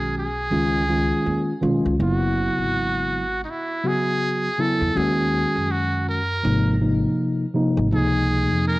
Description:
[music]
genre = hip hop, jazz-hop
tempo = 81 BPM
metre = 4/4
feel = swing 60% on 16ths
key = unclear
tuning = A4 = 440 Hz
[part]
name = trumpet with metal mute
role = melody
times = 0.0-8.8 s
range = D#4 to A#4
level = -25 LUFS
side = right 1 dB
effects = none
[part]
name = mellow tine electric piano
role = accompaniment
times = 0.0-8.8 s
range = B#2 to F#4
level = -22 LUFS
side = equal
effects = medium stereo tremolo
[part]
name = upright bass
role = bass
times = 0.0-8.8 s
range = F#1 to F#2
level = -26 LUFS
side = equal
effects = tube saturation
[sound]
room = moderate plate reverb, RT60 3.0 s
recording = worn, warbling old tape, cassette tape, warbly pitch drift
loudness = -19 LUFS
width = side -20 dB against mid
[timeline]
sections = 0.0-8.8 A section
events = none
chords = 0.0 G#m7; 0.5 C#; 2.0 F#sus2; 5.0 D#m7; 6.4 G#add9; 7.9 C#maj7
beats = 0.51 1.25 | 1.99 2.73 3.48 4.22 | 4.96 5.70 6.44 7.18 | 7.92 8.66

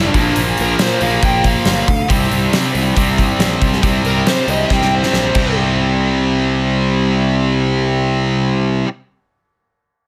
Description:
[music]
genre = hard rock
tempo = 138 BPM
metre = 4/4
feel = straight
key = unclear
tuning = A4 = 440 Hz
[part]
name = smooth overdriven lead guitar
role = melody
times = 0.0-5.6 s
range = D4 to G5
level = -22 LUFS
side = equal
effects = plate reverb, tape echo
[part]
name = distorted electric guitar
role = riff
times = 0.0-8.9 s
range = G2 to C4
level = -22 LUFS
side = equal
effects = overdrive
[part]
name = heavy high-gain guitar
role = riff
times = 0.0-8.9 s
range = G2 to C4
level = -22 LUFS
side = equal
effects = distortion
[part]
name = fuzz picked electric bass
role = bass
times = 0.0-8.8 s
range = G1 to C3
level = -21 LUFS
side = equal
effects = overdrive
[part]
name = huge arena drum kit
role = drums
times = 0.1-5.5 s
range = crash cymbal, hi-hat, kick drum, snare drum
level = -20 LUFS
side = equal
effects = none
[sound]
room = light reverb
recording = none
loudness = -15 LUFS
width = mono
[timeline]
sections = 0.0-5.6 A section; 5.6-9.1 B section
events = lead electric guitar solo 0.0-5.6; drum fill 4.7-5.6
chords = 0.1 Bb5; 2.1 C5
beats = | 0.35 0.79 1.22 1.66 | 2.09 2.52 2.96 3.39 | 3.83 4.26 4.70 5.13 | 5.57 6.00 6.44 6.88 | 7.31 7.75 8.18 8.62

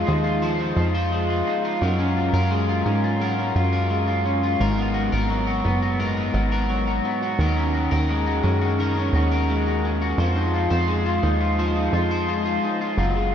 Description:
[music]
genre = dream pop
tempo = 86 BPM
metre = 4/4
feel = straight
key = unclear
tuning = A4 = 441 Hz
[part]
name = electric guitar at the edge of break-up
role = arpeggios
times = 0.0-13.3 s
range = Ab2 to C5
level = -22 LUFS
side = left 1 dB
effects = analog chorus, diffuse ambient delay
[part]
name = plucky analog bass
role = bass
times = 0.0-13.3 s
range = Gb1 to Ab2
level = -23 LUFS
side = right 1 dB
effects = none
[sound]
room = wet lush hall reverb, RT60 2.6 s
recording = dreamy mix soaked in reverb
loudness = -20 LUFS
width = side -8 dB against mid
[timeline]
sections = 0.0-13.3 A section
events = none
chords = 0.0 Fm7; 1.8 Gbmaj9; 4.6 Abm9; 7.4 Ebm7; 10.2 Fm7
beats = 0.41 1.11 | 1.81 2.51 3.21 3.90 | 4.60 5.30 6.00 6.69 | 7.39 8.09 8.79 9.48 | 10.18 10.88 11.58 12.28 | 12.97

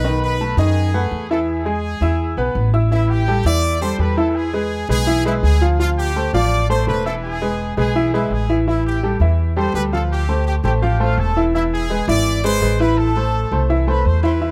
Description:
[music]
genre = latin, salsa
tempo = 167 BPM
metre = 4/4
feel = straight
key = A minor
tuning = A4 = 440 Hz
[part]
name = bright trumpet section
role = melody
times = 0.0-14.5 s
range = E4 to D6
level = -26 LUFS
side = equal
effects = tape echo
[part]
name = bright upright piano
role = accompaniment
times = 0.0-14.5 s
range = D#3 to E6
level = -22 LUFS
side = equal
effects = none
[part]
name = upright bass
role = bass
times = 0.0-14.5 s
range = E1 to F#2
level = -21 LUFS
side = equal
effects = none
[sound]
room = light reverb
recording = close, detailed microphones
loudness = -18 LUFS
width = mono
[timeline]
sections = 0.0-2.9 A section; 2.9-14.4 B section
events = none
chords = 0.0 B7; 1.5 E; 2.9 Am7; 4.4 E7; 5.8 Dm7; 7.2 E; 8.7 Am7; 10.1 Dm7; 11.5 E7; 13.0 Am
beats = | 0.04 0.40 0.76 1.12 | 1.48 1.84 2.20 2.56 | 2.92 3.27 3.63 3.99 | 4.35 4.71 5.07 5.43 | 5.79 6.15 6.51 6.87 | 7.23 7.59 7.95 8.31 | 8.67 9.03 9.39 9.75 | 10.11 10.47 10.82 11.18 | 11.54 11.90 12.26 12.62 | 12.98 13.34 13.70 14.05 | 14.41

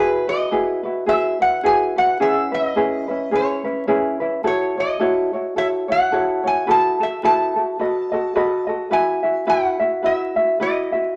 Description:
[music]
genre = Hawaiian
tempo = 107 BPM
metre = 4/4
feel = swing 58% on 8ths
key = E major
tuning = A4 = 440 Hz
[part]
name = metal-body resonator slide guitar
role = melody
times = 0.0-11.2 s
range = B4 to A5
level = -23 LUFS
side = equal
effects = none
[part]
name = ukulele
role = accompaniment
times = 0.0-11.2 s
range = C#4 to E5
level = -22 LUFS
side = equal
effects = none
[sound]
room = wet studio reverb, RT60 0.8 s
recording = vinyl crackle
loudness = -20 LUFS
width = mono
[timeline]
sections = 0.0-11.2 A section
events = none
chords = 0.0 Eadd9; 2.2 C#m7; 4.4 F#m7; 6.7 B7sus4; 7.8 B7; 8.9 Esus2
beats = 0.52 1.08 1.64 | 2.20 2.76 3.32 3.88 | 4.44 5.00 5.56 6.12 | 6.68 7.24 7.80 8.36 | 8.92 9.48 10.04 10.60 | 11.16

